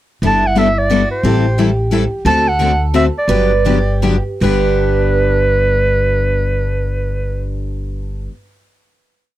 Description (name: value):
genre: acoustic string swing (jazz manouche)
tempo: 150-177 BPM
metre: 3/4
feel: swing 60% on 8ths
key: G major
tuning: A4 = 440 Hz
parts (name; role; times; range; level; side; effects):
- picked steel-string acoustic guitar; second line; 0.2-8.3 s; E4 to B4; -21 LUFS; right 7 dB; none
- picked steel-string acoustic guitar; accompaniment; 0.2-8.3 s; G2 to A4; -19 LUFS; left 6 dB; none
- picked steel-string acoustic guitar; accompaniment; 0.2-8.3 s; G2 to A4; -25 LUFS; right 6 dB; none
- upright bass; bass; 0.2-8.3 s; G1 to D2; -17 LUFS; equal; none
- breathy clarinet; melody; 0.3-7.6 s; B4 to A5; -17 LUFS; right 1 dB; none
room: little or no reverb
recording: dry, close 1970s-style studio recording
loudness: -12 LUFS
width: side -14 dB against mid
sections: 0.2-4.4 A section; 4.4-6.8 final chord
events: slowing down 2.3-4.4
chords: 0.2 Gadd9; 1.2 Am7; 2.3 D7; 3.3 Gmaj7; 4.4 G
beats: | 0.23 0.56 0.91 | 1.24 1.58 1.92 | 2.26 2.60 2.94 | 3.29 3.65 4.03 | 4.42 4.82 5.21 | 5.61 6.01 6.41